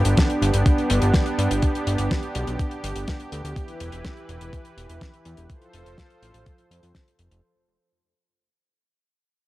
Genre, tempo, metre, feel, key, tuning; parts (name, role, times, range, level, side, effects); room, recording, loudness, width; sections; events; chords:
italo disco; 124 BPM; 4/4; straight; G mixolydian; A4 = 440 Hz
warm analog pad; sustained chords; 0.0-7.4 s; E3 to C5; -27 LUFS; right 1 dB; chorus
fat analog bass; bass; 0.0-7.4 s; E1 to G2; -24 LUFS; equal
damped 70s drum kit; drums; 0.1-7.4 s; hi-hat, snare drum; -27 LUFS; left 1 dB; studio ambience
electronic kick drum; drums; 0.2-7.0 s; -22 LUFS; equal; studio ambience
small room reverb; dry, gritty hardware recording, transformer saturation, cassette tape; -20 LUFS; side -17 dB against mid
0.0-7.4 A section
fade-out 0.0-7.4
0.0 G; 3.6 Em; 5.5 F